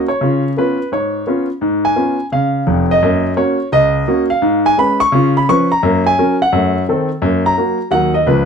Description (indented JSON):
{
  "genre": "jazz, stride piano",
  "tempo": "171 BPM",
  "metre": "4/4",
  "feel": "swing 65% on 8ths",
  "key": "F# major",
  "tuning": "A4 = 440 Hz",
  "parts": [
    { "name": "clear concert grand piano", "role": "solo", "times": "0.0-8.5 s", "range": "E#1 to C#6", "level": "-12 LUFS", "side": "equal", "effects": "none" }
  ],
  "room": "light reverb",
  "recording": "close, detailed microphones",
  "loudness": "-12 LUFS",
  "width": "side -6 dB against mid",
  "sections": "0.0-8.5 A section",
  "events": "none",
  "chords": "0.2 C#7; 1.6 C#7/G#; 3.0 F#; 4.4 C#5/G#; 5.1 C#7; 5.8 F#; 6.5 F#dim7; 7.2 F#; 7.9 D#m",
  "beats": "| 0.22 0.57 0.92 1.27 | 1.62 1.97 2.32 2.67 | 3.02 3.37 3.72 4.07 | 4.42 4.77 5.12 5.47 | 5.82 6.17 6.52 6.87 | 7.22 7.57 7.92 8.28"
}